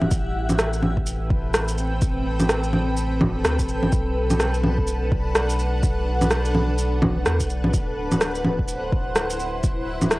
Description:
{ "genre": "future garage", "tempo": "126 BPM", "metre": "4/4", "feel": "swing 60% on 16ths", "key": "unclear", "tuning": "A4 = 440 Hz", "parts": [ { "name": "granular cloud pad", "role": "sustained chords", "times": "0.0-10.2 s", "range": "C4 to G5", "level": "-27 LUFS", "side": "equal", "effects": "built-in reverb, sidechain pumping, cassette tape" }, { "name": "warm sub bass", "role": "bass", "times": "0.0-10.2 s", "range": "D1 to E2", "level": "-25 LUFS", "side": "equal", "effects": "sidechain pumping" }, { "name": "electronic bongos, shaker and rim click", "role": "drums", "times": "0.0-10.2 s", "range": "none", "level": "-22 LUFS", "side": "equal", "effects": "overdrive, cassette tape" }, { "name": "electronic kick drum", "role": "drums", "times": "0.1-9.8 s", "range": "none", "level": "-24 LUFS", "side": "equal", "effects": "overdrive, cassette tape" } ], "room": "light reverb", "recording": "home recording on cassette", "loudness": "-20 LUFS", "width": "side -20 dB against mid", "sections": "0.0-10.2 A section", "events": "none", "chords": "0.1 Am9; 3.9 Bm7; 7.7 D13" }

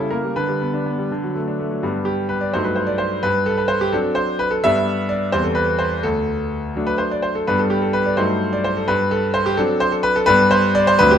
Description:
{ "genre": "classical-period piano sonatina", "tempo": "85 BPM (dotted quarters)", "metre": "6/8", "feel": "straight", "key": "G major", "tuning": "A4 = 440 Hz", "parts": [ { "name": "bright concert grand piano", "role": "solo", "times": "0.0-11.2 s", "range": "D2 to E5", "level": "-16 LUFS", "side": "equal", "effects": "none" } ], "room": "moderate recital hall reverb, RT60 1.4 s", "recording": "dark, warm production", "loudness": "-17 LUFS", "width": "side -8 dB against mid", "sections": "0.0-1.8 A section; 1.8-11.2 B section", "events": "none", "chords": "0.4 G/D; 1.1 D; 1.8 G; 2.5 B7b9b13/G; 3.2 D7/G; 4.6 G; 5.3 C/E; 6.0 D; 7.5 G; 8.2 F#dim7/G; 8.9 D7/G; 10.3 G" }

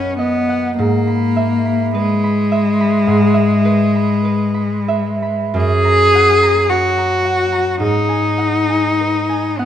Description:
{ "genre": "classical, romantic duo for cello and harp", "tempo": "44-54 BPM", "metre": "4/4", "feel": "rubato", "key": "unclear", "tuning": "A4 = 440 Hz", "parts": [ { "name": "rich cello", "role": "melody", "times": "0.0-9.7 s", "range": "G#3 to G#4", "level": "-14 LUFS", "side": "left 2 dB", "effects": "none" }, { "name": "concert harp", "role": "accompaniment", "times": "0.0-9.7 s", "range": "F#2 to B5", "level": "-19 LUFS", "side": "right 3 dB", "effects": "none" } ], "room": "wet recital hall reverb, RT60 1.6 s", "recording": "none", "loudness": "-13 LUFS", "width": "side -10 dB against mid", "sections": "0.0-9.7 A section", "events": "none", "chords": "0.0 B; 0.8 E/G#; 5.6 F#; 7.8 G#m7" }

